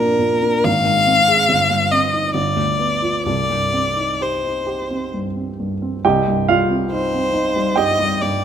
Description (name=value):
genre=classical, romantic duo for violin and grand piano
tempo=63-73 BPM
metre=3/4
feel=rubato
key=C minor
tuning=A4 = 440 Hz
part: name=clear violin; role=melody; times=0.0-8.4 s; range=Bb4 to F5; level=-17 LUFS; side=left 2 dB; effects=none
part: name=dark baby grand piano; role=accompaniment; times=0.0-8.4 s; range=G1 to G5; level=-19 LUFS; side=right 2 dB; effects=none
room=moderate recital hall reverb, RT60 1.3 s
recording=none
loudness=-15 LUFS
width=side -8 dB against mid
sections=0.0-6.0 A section; 6.0-8.4 A section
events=none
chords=0.0 Gm/Bb; 0.7 Fm/Ab; 1.5 Cm/G; 2.4 G7; 3.3 Cm